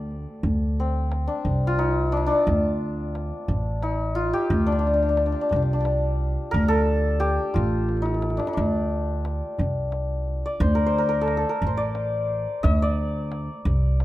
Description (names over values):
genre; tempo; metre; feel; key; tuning
Persian modal ensemble; 59 BPM (dotted quarters); 6/8; straight; D dastgah shur; A4 = 439 Hz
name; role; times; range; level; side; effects
santur; melody; 0.0-14.0 s; C4 to Eb5+45c; -25 LUFS; left 1 dB; none
upright bass; bass; 0.0-14.0 s; A1 to D2; -24 LUFS; equal; none
warm cello; drone; 0.0-0.5 s; D2; -45 LUFS; right 1 dB; none
tombak; percussion; 0.1-14.0 s; none; -31 LUFS; right 1 dB; none
room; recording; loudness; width
light reverb; rough home demo mix; -21 LUFS; side -15 dB against mid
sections
0.4-14.0 A section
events
drum fill 7.9-8.6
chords
none